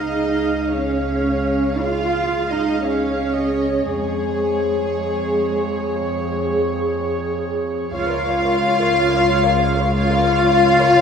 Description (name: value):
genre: classical, slow romantic movement for string orchestra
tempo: 55-61 BPM (dotted quarters)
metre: 12/8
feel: rubato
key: Db major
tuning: A4 = 439 Hz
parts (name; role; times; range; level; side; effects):
- clear studio violin section; melody; 0.0-11.0 s; Ab4 to F5; -24 LUFS; left 8 dB; none
- warm studio violin section; second line; 0.0-11.0 s; Ab4 to F5; -25 LUFS; left 4 dB; none
- warm chamber viola section; accompaniment; 0.0-11.0 s; Ab4 to F5; -23 LUFS; right 2 dB; none
- rich studio double bass section; bass; 0.0-11.0 s; Db2 to F2; -24 LUFS; right 1 dB; none
- warm studio cello section; bass; 0.0-11.0 s; Ab3 to F4; -21 LUFS; right 2 dB; none
room: wet concert hall reverb, RT60 1.8 s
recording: heard from further back in the room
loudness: -17 LUFS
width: side -7 dB against mid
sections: 0.0-11.0 A section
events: none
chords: 0.0 Db; 3.9 Db/F; 7.9 Bbm/Db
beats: 0.72 1.80 2.84 | 3.89 4.92 5.93 6.94 | 7.95 8.96 9.96 10.95